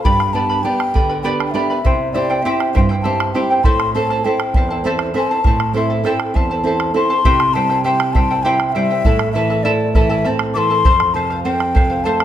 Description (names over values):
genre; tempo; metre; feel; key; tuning
andean folk, Andean ensemble; 67 BPM (dotted quarters); 6/8; straight; A minor; A4 = 440 Hz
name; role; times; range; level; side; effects
mellow hollow large quena; melody; 0.0-12.2 s; D5 to D6; -19 LUFS; left 4 dB; none
charango; accompaniment; 0.0-12.2 s; E4 to B5; -21 LUFS; right 1 dB; none
nylon-string guitar; accompaniment; 0.0-12.2 s; E2 to A4; -20 LUFS; right 3 dB; none
bombo; percussion; 0.1-12.2 s; none; -18 LUFS; right 1 dB; none
room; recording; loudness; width
moderate recital hall reverb, RT60 1.6 s; close, detailed microphones; -14 LUFS; side -11 dB against mid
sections
0.0-7.3 A section; 7.3-12.2 B section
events
none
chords
0.0 G; 1.9 C; 3.7 Am; 7.3 C; 9.1 Am; 10.8 F